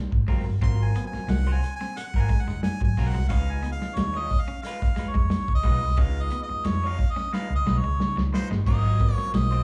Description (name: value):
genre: funk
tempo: 90 BPM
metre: 4/4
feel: straight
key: Ab mixolydian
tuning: A4 = 440 Hz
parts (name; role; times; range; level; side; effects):
- semi-hollow electric guitar; accompaniment; 0.1-9.6 s; Gb3 to Db5; -40 LUFS; equal; slapback echo
- vintage muted fingered electric bass; bass; 0.1-9.6 s; Gb1 to Db3; -27 LUFS; equal; none
- warm soul drum kit; drums; 0.1-9.6 s; crash cymbal, hi-hat, kick drum, snare drum; -28 LUFS; equal; none
- electric guitar at the edge of break-up; riff; 0.3-9.6 s; F3 to Db4; -37 LUFS; equal; slapback echo
- percussive tonewheel organ; stabs; 0.3-9.6 s; Gb3 to F4; -41 LUFS; equal; overdrive, chorus vibrato, slow rotary speaker, slapback echo, analog delay
- bright harmonica; melody; 0.6-9.6 s; C5 to C6; -33 LUFS; equal; slapback echo
room: small room ambience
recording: live gig heard through the venue's PA, cassette tape, club ambience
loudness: -25 LUFS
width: mono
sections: 0.0-8.7 A section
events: harmonica solo 0.0-8.7; drum fill 7.3-8.7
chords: 0.0 Ab13; 3.3 Db9; 8.7 Ab13